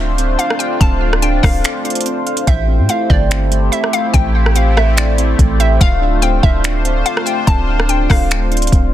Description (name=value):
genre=hip hop, atmospheric cloud-rap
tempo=144 BPM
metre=4/4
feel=half-time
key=unclear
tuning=A4 = 440 Hz
part: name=sweeping resonant pad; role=sustained chords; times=0.0-8.9 s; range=A3 to C5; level=-20 LUFS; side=left 1 dB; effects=chorus, sidechain pumping
part: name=soft electric-piano-like synth keys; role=arpeggios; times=0.0-8.9 s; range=A3 to G5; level=-23 LUFS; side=right 4 dB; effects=chorus, digital delay
part: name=soft 808-style bass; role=bass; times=0.0-8.9 s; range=D1 to A2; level=-15 LUFS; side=equal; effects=none
part: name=smooth R&B drum kit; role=drums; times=0.2-8.8 s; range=finger snaps, hi-hat, kick drum, rim click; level=-15 LUFS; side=equal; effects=soft clipping on snare
part: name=hollow square pluck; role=melody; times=0.4-8.3 s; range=D5 to A5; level=-20 LUFS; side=left 2 dB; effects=chorus, digital delay
room=digital ambience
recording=dense, heavily limited modern master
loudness=-12 LUFS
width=side -12 dB against mid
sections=0.0-8.9 A section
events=break 1.6-2.5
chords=0.0 Dm7; 2.5 Am7; 5.8 Dm7